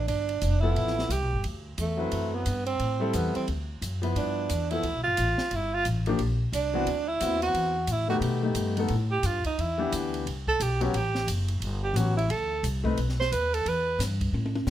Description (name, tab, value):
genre	jazz, small-group swing and bop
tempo	177 BPM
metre	4/4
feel	swing 62% on 8ths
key	D mixolydian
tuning	A4 = 440 Hz
part	breathy tenor saxophone	second line	0.0-14.0 s	A3 to C5	-28 LUFS	right 3 dB	none
part	upright bass	bass	0.0-14.7 s	F1 to B2	-29 LUFS	equal	none
part	compact cocktail drum kit	drums	0.1-14.7 s	hi-hat, kick drum, ride cymbal, snare drum, toms	-37 LUFS	right 1 dB	none
part	warm baby grand piano	accompaniment	0.6-13.0 s	Eb3 to B4	-30 LUFS	left 4 dB	none
room	light reverb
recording	none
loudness	-25 LUFS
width	side -12 dB against mid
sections	0.0-14.7 A section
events	tenor saxophone solo 0.0-14.7; drum fill 14.3-14.7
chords	0.1 G13; 1.4 D13; 2.8 Am7; 3.5 D69; 4.2 G13; 5.5 Gm; 6.9 D13; 8.2 Baug7; 9.6 Em7; 10.9 A13; 12.3 D5; 13.0 B; 13.7 Em